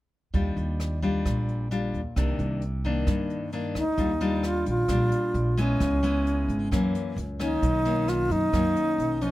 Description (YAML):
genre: bossa nova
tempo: 132 BPM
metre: 4/4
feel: straight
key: unclear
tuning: A4 = 444 Hz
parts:
  - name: nylon-string guitar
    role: accompaniment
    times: 0.3-9.3 s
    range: Gb2 to F4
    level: -29 LUFS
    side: left 2 dB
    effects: none
  - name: upright bass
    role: bass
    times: 0.3-9.3 s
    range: Ab1 to G2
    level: -28 LUFS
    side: right 1 dB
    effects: none
  - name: jazz brush drum kit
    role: drums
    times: 0.3-9.3 s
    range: hi-hat, kick drum, rim click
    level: -32 LUFS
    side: right 1 dB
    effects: none
  - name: bright reedy wooden-headed alto flute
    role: melody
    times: 3.8-9.3 s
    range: Db4 to F4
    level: -26 LUFS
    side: equal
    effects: none
room: little or no reverb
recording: close, detailed microphones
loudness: -23 LUFS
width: side -16 dB against mid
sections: 0.3-4.0 A section; 4.0-9.3 B section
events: none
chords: 0.3 Ebmaj9; 2.2 Cm9; 4.0 Ebmaj9; 5.8 Dbm7; 6.7 Gb7; 7.6 Bmaj9